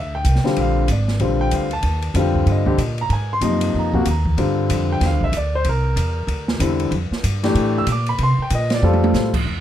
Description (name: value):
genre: jazz, small-group swing and bop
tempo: 189 BPM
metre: 4/4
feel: swing 62% on 8ths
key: F major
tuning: A4 = 440 Hz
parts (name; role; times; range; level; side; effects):
- clear concert grand piano; accompaniment; 0.0-9.3 s; C3 to E6; -21 LUFS; left 2 dB; none
- upright bass; bass; 0.0-9.6 s; Ab1 to C3; -20 LUFS; equal; none
- open jazz drum kit; drums; 0.2-9.4 s; crash cymbal, hi-hat, kick drum, ride cymbal, snare drum, toms; -26 LUFS; right 1 dB; none
room: light reverb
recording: dark, warm production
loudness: -17 LUFS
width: side -11 dB against mid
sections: 0.0-9.5 A section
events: drum fill 8.8-9.1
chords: 0.0 Fmaj7(no3); 0.6 Bb7; 1.8 Ebmaj7; 3.1 Ab13; 4.4 Gm7; 5.6 C7; 6.9 Fmaj7; 8.2 Bb69; 8.8 F